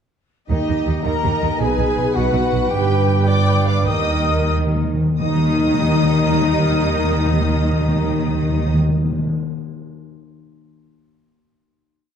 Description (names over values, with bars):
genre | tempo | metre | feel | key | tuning
cinematic, heroic adventure film score | 86-110 BPM (dotted quarters) | 6/8 | straight | Eb major | A4 = 440 Hz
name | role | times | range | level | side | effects
warm symphonic violin section | melody | 0.5-8.7 s | Eb5 to Eb6 | -27 LUFS | left 3 dB | none
dark cor anglais | second line | 0.5-8.7 s | Eb4 to Eb5 | -30 LUFS | right 2 dB | none
mellow flute section | second line | 0.5-8.7 s | Eb5 to Eb6 | -29 LUFS | left 3 dB | none
warm symphonic violin section | second line | 0.5-8.7 s | G4 to G5 | -30 LUFS | left 2 dB | none
warm symphonic viola section | accompaniment | 0.5-8.7 s | Eb4 to Eb5 | -26 LUFS | equal | none
mellow French horn section | sustained chords | 0.5-8.7 s | G3 to Eb4 | -26 LUFS | left 6 dB | none
dark trumpet section | stabs | 0.5-8.7 s | G4 to B4 | -28 LUFS | equal | none
rich symphonic cello section | bass | 0.5-8.7 s | G2 to Eb3 | -24 LUFS | right 2 dB | none
warm symphonic double bass section | bass | 0.5-8.7 s | G1 to Eb2 | -21 LUFS | right 3 dB | none
timpani | percussion | 3.9-9.3 s | Eb3 | -22 LUFS | left 2 dB | none
room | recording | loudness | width
moderate scoring stage reverb, RT60 1.9 s | dark, warm production | -16 LUFS | side -8 dB against mid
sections
0.5-5.2 theme; 5.2-8.0 final chord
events
slowing down 2.2-5.2; timpani fill 3.9-5.2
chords
0.5 Eb; 1.6 B; 2.7 G; 3.9 Eb